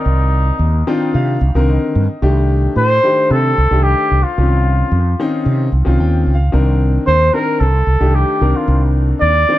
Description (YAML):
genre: jazz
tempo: 112 BPM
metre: 4/4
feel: straight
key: C dorian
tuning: A4 = 442 Hz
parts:
  - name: mellow trumpet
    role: melody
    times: 0.0-9.6 s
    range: Eb4 to D5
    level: -17 LUFS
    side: equal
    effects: tape echo
  - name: warm concert grand piano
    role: accompaniment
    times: 0.0-9.6 s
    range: D3 to G5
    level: -19 LUFS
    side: left 2 dB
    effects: none
  - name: mellow fretless electric bass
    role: bass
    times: 0.1-9.4 s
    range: C2 to C3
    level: -13 LUFS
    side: equal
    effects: lush chorus
room: light reverb, small room ambience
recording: dark, warm production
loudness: -12 LUFS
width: side -14 dB against mid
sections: 0.0-9.6 A section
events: grand piano fill 0.6-2.2, 5.7-6.5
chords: 0.0 Cm9; 2.2 Cm69; 4.4 Dbmaj9/C; 6.5 Cm9; 7.6 Cm69; 8.4 Cm9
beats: | 0.07 0.61 1.15 1.69 | 2.23 2.77 3.31 3.85 | 4.38 4.92 5.46 6.00 | 6.53 7.07 7.61 8.14 | 8.68 9.22